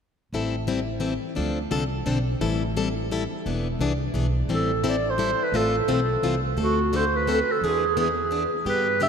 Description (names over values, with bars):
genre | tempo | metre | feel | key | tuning
acoustic string swing (jazz manouche) | 173 BPM | 3/4 | swing 61% on 8ths | A minor | A4 = 440 Hz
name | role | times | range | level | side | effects
picked plugged-in steel-string acoustic guitar | accompaniment | 0.3-9.1 s | D3 to A4 | -26 LUFS | left 3 dB | none
upright bass | bass | 0.3-9.1 s | E1 to G2 | -28 LUFS | right 1 dB | none
breathy clarinet | melody | 4.5-9.1 s | F#4 to E5 | -23 LUFS | right 2 dB | tape echo
room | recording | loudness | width
wet cathedral reverb, RT60 4.9 s | in a vast, echoing space | -22 LUFS | side -6 dB against mid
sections
0.3-4.5 A section; 4.5-9.1 B section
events
none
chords
0.3 Am7; 1.4 Dm7; 2.4 Am7; 3.5 E7; 4.5 Am7; 5.5 Fmaj7/A; 6.6 D7; 7.6 E7